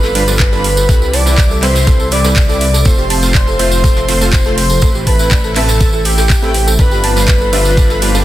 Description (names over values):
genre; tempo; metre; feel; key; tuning
progressive house; 122 BPM; 4/4; straight; unclear; A4 = 440 Hz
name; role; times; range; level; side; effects
warm velvety synth lead; melody; 0.0-8.2 s; G4 to D5; -19 LUFS; equal; chorus, sidechain pumping, digital delay
airy dreamy lead; second line; 0.0-8.2 s; G5 to D6; -23 LUFS; right 1 dB; chorus, sidechain pumping, digital delay
lush unison pad; sustained chords; 0.0-8.2 s; A2 to F4; -23 LUFS; left 2 dB; chorus, sidechain pumping
soft round pluck; arpeggios; 0.0-8.2 s; G4 to A5; -23 LUFS; right 1 dB; ensemble chorus, sidechain pumping, digital delay
dark detuned saw bass; bass; 0.0-8.2 s; F1 to C2; -15 LUFS; equal; tube saturation, sidechain pumping
soft brush drum kit; drums; 0.0-8.1 s; hi-hat, snare drum; -28 LUFS; left 3 dB; none
tambourine; percussion; 0.0-8.2 s; none; -22 LUFS; right 2 dB; none
supersaw stab; stabs; 0.2-8.2 s; G3 to C5; -21 LUFS; right 3 dB; sidechain pumping, digital delay
house drum kit; drums; 0.2-8.1 s; handclaps, hi-hat; -18 LUFS; right 2 dB; sidechain pumping on hats, small room ambience
electronic kick drum; drums; 0.4-7.9 s; none; -12 LUFS; equal; small room ambience
room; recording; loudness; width
little or no reverb; dense, heavily limited modern master; -9 LUFS; side -14 dB against mid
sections
0.0-8.2 A section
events
none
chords
0.0 G7; 0.9 Cmaj7; 2.9 F; 4.8 Amadd9; 6.8 G7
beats
0.40 | 0.89 1.38 1.87 2.37 | 2.86 3.35 3.84 4.33 | 4.82 5.32 5.81 6.30 | 6.79 7.28 7.77